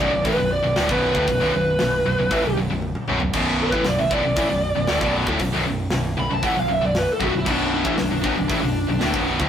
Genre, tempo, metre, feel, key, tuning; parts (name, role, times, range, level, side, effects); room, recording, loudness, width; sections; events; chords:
heavy metal; 116 BPM; 4/4; straight; B minor; A4 = 440 Hz
bluesy overdriven lead guitar; melody; 0.0-9.2 s; D4 to B5; -22 LUFS; equal; distortion
high-gain distorted guitar; riff; 0.0-9.5 s; B1 to E3; -26 LUFS; right 4 dB; distortion
high-gain distorted guitar; riff; 0.0-9.5 s; B1 to E3; -28 LUFS; equal; distortion
tight distorted guitar; riff; 0.0-9.5 s; B1 to E3; -26 LUFS; left 5 dB; distortion
picked electric bass; bass; 0.0-9.5 s; B0 to A1; -28 LUFS; equal
tight metal drum kit; drums; 0.2-9.5 s; crash cymbal, hi-hat, kick drum, snare drum, toms; -28 LUFS; equal
moderate stone room reverb, RT60 1.0 s; rough rehearsal-room recording, warm saturation; -18 LUFS; side -9 dB against mid
0.0-9.5 A section
lead electric guitar solo 0.0-9.5; drum fill 2.8-3.3
0.0 Bm